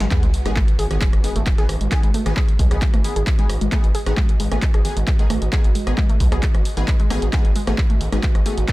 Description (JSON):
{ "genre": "driving peak-time techno", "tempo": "133 BPM", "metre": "4/4", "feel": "straight", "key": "G# phrygian", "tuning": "A4 = 440 Hz", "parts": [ { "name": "warbly dusty pluck", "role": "riff", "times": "0.0-8.7 s", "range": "G#3 to G#4", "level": "-28 LUFS", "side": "equal", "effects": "chorus, tube saturation, vintage 12-bit sampler grit, sidechain pumping, dub echo" }, { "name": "gritty driven synth bass", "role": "bass", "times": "0.0-8.6 s", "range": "G#1 to B1", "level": "-22 LUFS", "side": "equal", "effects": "tube saturation, sidechain pumping" }, { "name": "punchy analog drum machine", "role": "drums", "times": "0.0-8.7 s", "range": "handclaps, hi-hat, rim click, snare drum", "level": "-29 LUFS", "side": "equal", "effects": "sidechain pumping on hats" }, { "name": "noise sweep and sub drop", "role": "sound effects", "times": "0.1-1.9 s", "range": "none", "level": "-25 LUFS", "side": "equal", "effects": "none" }, { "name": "ethereal airy pad", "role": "texture", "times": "0.0-8.7 s", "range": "F#4 to G#5", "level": "-34 LUFS", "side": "right 4 dB", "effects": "ensemble chorus, built-in reverb, sidechain pumping" }, { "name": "rave stab", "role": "stabs", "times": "0.1-8.5 s", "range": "D#3 to G#4", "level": "-29 LUFS", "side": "left 1 dB", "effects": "chorus, built-in reverb, sidechain pumping, dub echo" }, { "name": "electronic kick drum", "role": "drums", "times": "0.1-8.7 s", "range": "none", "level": "-18 LUFS", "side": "equal", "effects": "overdrive" } ], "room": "digital ambience", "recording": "none", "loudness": "-16 LUFS", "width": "side -19 dB against mid", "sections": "0.1-8.7 A section", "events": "band accent 0.0; drop 0.1-8.7; impact 0.1-1.9", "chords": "0.1 G#m", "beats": "| 0.11 0.56 1.01 1.47 | 1.92 2.37 2.82 3.27 | 3.72 4.17 4.62 5.08 | 5.53 5.98 6.43 6.88 | 7.33 7.78 8.23 8.68" }